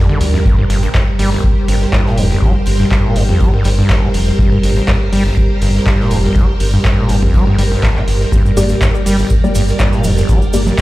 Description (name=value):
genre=acid house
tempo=122 BPM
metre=4/4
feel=swing 54% on 16ths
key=G minor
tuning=A4 = 440 Hz
part: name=string machine, full ensemble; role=sustained chords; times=0.0-10.8 s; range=G3 to D5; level=-19 LUFS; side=right 1 dB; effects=ensemble chorus, sidechain pumping
part: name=acid bass, saw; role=riff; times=0.0-10.8 s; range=G1 to G3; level=-17 LUFS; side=equal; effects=overdrive, sidechain pumping, ping-pong delay
part: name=round analog bass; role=bass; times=0.2-10.7 s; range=F1 to D2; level=-14 LUFS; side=equal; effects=sidechain pumping
part: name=big rock drum kit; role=drums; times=0.2-10.8 s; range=hi-hat, snare drum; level=-32 LUFS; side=left 1 dB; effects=none
part: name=booming analog drum machine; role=drums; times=0.2-10.8 s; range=congas, handclaps, hi-hat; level=-22 LUFS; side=equal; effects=none
part: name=electronic kick drum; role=drums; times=0.5-10.8 s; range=none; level=-14 LUFS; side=equal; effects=none
part: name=cabasa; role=percussion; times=8.3-10.8 s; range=none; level=-30 LUFS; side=right 3 dB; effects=none
part: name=deep mellow chord stab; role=stabs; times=8.6-10.6 s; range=Bb3 to D5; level=-21 LUFS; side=left 3 dB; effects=chorus, cassette tape, ping-pong delay
room=light reverb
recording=played on a big sound system in a bare room, large studio reverb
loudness=-10 LUFS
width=side -17 dB against mid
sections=0.0-10.8 A section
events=none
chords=0.0 Gm